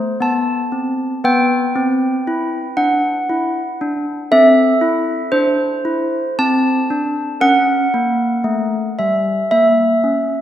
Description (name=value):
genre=classical, tune for handbells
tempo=58 BPM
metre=3/4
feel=straight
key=unclear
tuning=A4 = 440 Hz
part: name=handbells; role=solo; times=0.0-10.4 s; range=G3 to A5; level=-14 LUFS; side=equal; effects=none
room=wet concert hall reverb, RT60 1.8 s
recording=heard from further back in the room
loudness=-14 LUFS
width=side -11 dB against mid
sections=0.0-10.4 A section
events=none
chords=0.0 N.C.; 1.2 G/B; 4.3 Am/C; 7.4 C#dim7